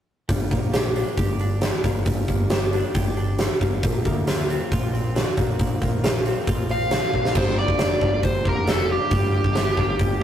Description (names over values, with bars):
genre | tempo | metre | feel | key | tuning
quiet-loud alternative rock | 136 BPM | 4/4 | straight | G minor | A4 = 440 Hz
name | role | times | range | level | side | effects
twelve-string electric guitar | arpeggios | 0.3-10.2 s | G2 to G4 | -30 LUFS | right 1 dB | digital delay
growling picked electric bass | bass | 0.3-10.2 s | F1 to G2 | -26 LUFS | equal | overdrive
huge arena drum kit | drums | 0.3-10.1 s | crash cymbal, hi-hat, kick drum, snare drum | -22 LUFS | equal | none
nasal lead guitar with a parked wah | melody | 6.7-10.2 s | G4 to F5 | -24 LUFS | right 1 dB | overdrive
room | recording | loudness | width
light reverb | rough rehearsal-room recording, tube saturation | -20 LUFS | side -10 dB against mid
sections
0.3-7.4 A section; 7.4-10.2 B section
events
drum fill 7.1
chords
0.3 Gm; 3.8 Bbadd9; 7.4 Gm